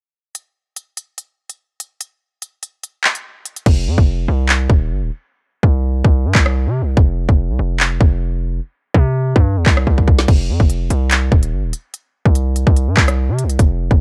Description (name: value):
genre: hip hop, drill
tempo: 145 BPM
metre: 4/4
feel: half-time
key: unclear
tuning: A4 = 440 Hz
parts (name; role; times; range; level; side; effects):
- drill drum kit; drums; 0.4-14.0 s; crash cymbal, handclaps, hi-hat, kick drum, rim click, snare drum; -15 LUFS; equal; none
- distorted 808-style bass; bass; 3.7-14.0 s; Eb1 to C3; -19 LUFS; equal; distortion
room: little or no reverb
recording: dry, gritty hardware recording, cassette tape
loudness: -16 LUFS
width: mono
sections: 0.4-3.7 A section; 3.7-14.0 B section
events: hi-hats muted 3.7-10.3; drum fill 9.9-10.3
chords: none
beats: | 0.35 0.77 1.18 1.59 | 2.01 2.42 2.83 3.25 | 3.66 4.08 4.49 4.90 | 5.32 5.73 6.14 6.56 | 6.97 7.38 7.80 8.21 | 8.63 9.04 9.45 9.87 | 10.28 10.70 11.11 11.52 | 11.94 12.35 12.77 13.18 | 13.59 14.01